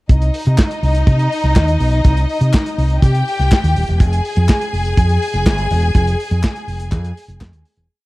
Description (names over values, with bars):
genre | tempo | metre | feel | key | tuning
disco | 123 BPM | 4/4 | straight | C minor | A4 = 441 Hz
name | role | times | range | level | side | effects
warm studio string section | second line | 0.1-7.9 s | Eb4 to Ab5 | -21 LUFS | left 1 dB | none
fingered electric bass | bass | 0.1-7.9 s | Eb1 to C3 | -15 LUFS | equal | none
warm soul drum kit | drums | 0.1-7.9 s | handclaps, hi-hat, kick drum, snare drum | -16 LUFS | equal | none
group handclap | percussion | 0.6-7.5 s | none | -30 LUFS | left 2 dB | none
room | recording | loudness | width
little or no reverb | dark, warm production | -13 LUFS | side -20 dB against mid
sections
0.1-7.9 groove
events
fade-out 5.9-7.9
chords
0.1 Cm; 4.0 Fm